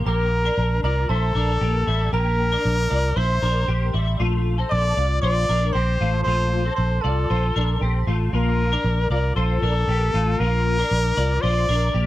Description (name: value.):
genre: indie pop.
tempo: 116 BPM.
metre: 4/4.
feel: straight.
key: Bb major.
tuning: A4 = 441 Hz.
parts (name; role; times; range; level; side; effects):
twelve-string electric guitar; arpeggios; 0.0-12.1 s; G3 to D5; -27 LUFS; left 4 dB; ensemble chorus.
bright trumpet; melody; 0.1-12.1 s; A4 to D5; -24 LUFS; left 1 dB; none.
glockenspiel with hard plastic mallets; second line; 0.1-8.1 s; A5 to D6; -33 LUFS; right 12 dB; none.
vintage muted fingered electric bass; bass; 0.1-12.1 s; A1 to C2; -21 LUFS; equal; none.
room: little or no reverb.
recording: dry, close 1970s-style studio recording.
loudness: -19 LUFS.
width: side -15 dB against mid.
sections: 0.0-8.3 A section; 8.3-12.1 A section.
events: none.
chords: 0.1 C7; 4.2 Bbadd9.